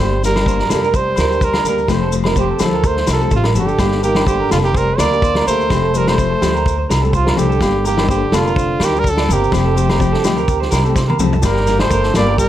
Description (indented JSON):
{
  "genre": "highlife guitar band",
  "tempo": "126 BPM",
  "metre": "4/4",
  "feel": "swing 54% on 16ths",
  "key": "unclear",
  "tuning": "A4 = 440 Hz",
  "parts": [
    { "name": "clear trumpet", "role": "melody", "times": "0.0-12.5 s", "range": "F4 to D5", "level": "-20 LUFS", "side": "right 3 dB", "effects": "none" },
    { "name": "breathy trombone", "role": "second line", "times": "0.0-12.5 s", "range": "C3 to Bb3", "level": "-24 LUFS", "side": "left 4 dB", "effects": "none" },
    { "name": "fingerpicked steel-string acoustic guitar", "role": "accompaniment", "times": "0.0-12.3 s", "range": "F3 to G4", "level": "-23 LUFS", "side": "left 8 dB", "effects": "none" },
    { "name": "electric guitar at the edge of break-up", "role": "arpeggios", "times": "0.0-12.5 s", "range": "G4 to D5", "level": "-22 LUFS", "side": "right 7 dB", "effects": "lush chorus, slapback echo" },
    { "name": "upright bass", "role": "bass", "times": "0.0-12.5 s", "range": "F1 to D2", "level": "-19 LUFS", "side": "equal", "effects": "none" },
    { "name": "maracas", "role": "percussion", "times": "0.0-12.5 s", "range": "none", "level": "-31 LUFS", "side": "left 7 dB", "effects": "none" },
    { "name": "vintage drum kit", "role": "drums", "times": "0.2-12.5 s", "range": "kick drum, snare drum, toms", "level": "-20 LUFS", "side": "equal", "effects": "none" },
    { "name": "agogo bells", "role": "percussion", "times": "0.4-12.3 s", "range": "none", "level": "-27 LUFS", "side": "left 7 dB", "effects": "none" },
    { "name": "overdriven combo organ", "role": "sustained chords", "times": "11.4-12.5 s", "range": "D5 to G5", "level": "-32 LUFS", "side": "left 1 dB", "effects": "none" }
  ],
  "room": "studio reverb",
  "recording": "none",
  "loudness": "-13 LUFS",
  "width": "side -12 dB against mid",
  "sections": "0.0-11.4 A section; 11.4-12.5 B section",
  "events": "drum fill 11.0-11.4",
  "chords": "0.0 Fadd9; 11.4 Gm",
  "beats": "0.46 0.94 1.41 | 1.89 2.36 2.84 3.32 | 3.79 4.27 4.75 5.22 | 5.70 6.18 6.66 7.13 | 7.61 8.09 8.57 9.04 | 9.52 10.00 10.48 10.96 | 11.43 11.91 12.39"
}